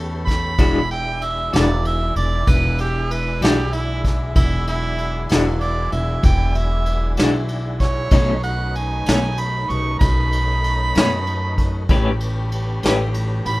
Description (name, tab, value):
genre	slow blues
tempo	64 BPM (dotted quarters)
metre	12/8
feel	straight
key	E mixolydian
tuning	A4 = 440 Hz
part	tonewheel organ	sustained chords	0.0-13.6 s	E3 to B4	-32 LUFS	equal	chorus vibrato, wide subtle chorus
part	warm horn section	sustained chords	0.0-13.6 s	D#3 to A4	-32 LUFS	left 1 dB	none
part	upright bass	bass	0.0-13.6 s	E1 to F#2	-22 LUFS	equal	none
part	clear harmonica	second line	0.3-13.6 s	E4 to C#6	-24 LUFS	right 3 dB	overdrive
part	vintage brush drum kit	drums	0.3-13.6 s	kick drum, ride cymbal, snare drum	-20 LUFS	equal	none
part	electric guitar through a small old amp	accompaniment	0.6-13.0 s	B2 to B4	-20 LUFS	left 2 dB	tremolo
room	little or no reverb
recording	rough home demo mix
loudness	-17 LUFS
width	side -20 dB against mid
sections	0.0-13.6 A section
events	harmonica solo 0.0-13.6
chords	0.0 A9; 0.6 E9; 8.1 B9; 11.9 A9